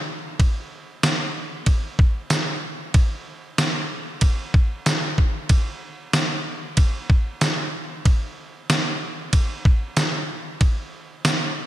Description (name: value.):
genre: dream pop.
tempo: 94 BPM.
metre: 4/4.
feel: straight.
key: none.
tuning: none.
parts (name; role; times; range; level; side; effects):
detuned 8-bit digital drum machine; drums; 0.4-11.4 s; kick drum, ride cymbal, snare drum, tambourine; -20 LUFS; equal; gated reverb.
room: light reverb, digital ambience.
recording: bright 1980s-style digital production.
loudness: -20 LUFS.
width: side -14 dB against mid.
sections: 0.0-11.7 A section.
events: none.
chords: none.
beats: | 0.39 1.03 1.67 2.31 | 2.95 3.58 4.22 4.86 | 5.50 6.14 6.78 7.41 | 8.05 8.69 9.33 9.97 | 10.61 11.24.